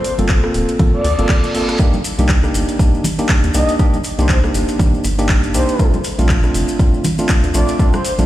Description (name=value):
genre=deep house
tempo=120 BPM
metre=4/4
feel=swing 57% on 16ths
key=C dorian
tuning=A4 = 440 Hz
part: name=breathy flute-like synth lead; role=melody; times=0.0-8.1 s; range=C5 to Eb5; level=-24 LUFS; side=left 1 dB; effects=analog chorus, analog delay
part: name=deep house drum kit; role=drums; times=0.0-8.3 s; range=handclaps, hi-hat, rim click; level=-24 LUFS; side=equal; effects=overdrive
part: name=tine electric piano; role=stabs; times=0.2-8.3 s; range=A3 to A4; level=-19 LUFS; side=right 1 dB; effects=overdrive, sidechain pumping, tape echo
part: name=rubbery square bass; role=bass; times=0.2-8.3 s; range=D1 to Eb2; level=-17 LUFS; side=equal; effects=none
part: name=congas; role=percussion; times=0.2-8.3 s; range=none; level=-24 LUFS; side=equal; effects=none
part: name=electronic kick drum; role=drums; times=0.3-7.9 s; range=none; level=-15 LUFS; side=equal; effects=overdrive
part: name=reverse cymbal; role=sound effects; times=1.0-1.8 s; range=none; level=-27 LUFS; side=right 1 dB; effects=none
part: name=maracas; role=percussion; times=1.8-8.3 s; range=none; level=-30 LUFS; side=left 4 dB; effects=none
room=light reverb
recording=played on a big sound system in a bare room, stone room reverb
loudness=-13 LUFS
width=side -14 dB against mid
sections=0.0-8.3 A section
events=reverse cymbal 1.0-1.8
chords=0.0 Gm11; 1.8 Cm9; 5.8 Bbmaj7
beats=0.29 0.80 1.29 | 1.79 2.29 2.79 3.29 | 3.79 4.29 4.79 5.29 | 5.79 6.29 6.79 7.29 | 7.79